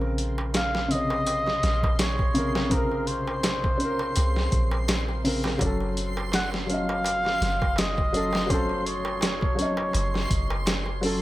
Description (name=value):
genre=trip hop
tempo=83 BPM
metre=4/4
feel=swing 56% on 16ths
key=Bb harmonic minor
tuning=A4 = 440 Hz
part: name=felt-muted upright piano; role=accompaniment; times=0.0-11.2 s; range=C3 to Eb5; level=-29 LUFS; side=left 1 dB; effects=harmonic tremolo, tape echo
part: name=soft 808-style bass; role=bass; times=0.0-11.2 s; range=Gb1 to C2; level=-30 LUFS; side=equal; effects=none
part: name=darbuka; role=percussion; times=0.0-11.0 s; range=none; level=-37 LUFS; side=right 2 dB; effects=none
part: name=backwards swelling texture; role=texture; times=0.2-11.2 s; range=C6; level=-39 LUFS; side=right 2 dB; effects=built-in reverb
part: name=trip hop sampler-style drum kit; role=drums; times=0.2-11.2 s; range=hi-hat, kick drum, snare drum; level=-27 LUFS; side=equal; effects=none
part: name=trumpet with cup mute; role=melody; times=0.6-11.0 s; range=Bb4 to Gb5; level=-29 LUFS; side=equal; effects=vintage 12-bit sampler grit, tape echo
room=small room reverb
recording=none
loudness=-23 LUFS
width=side -16 dB against mid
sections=0.0-11.2 A section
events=none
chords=0.0 Bbmadd9; 5.6 Gbm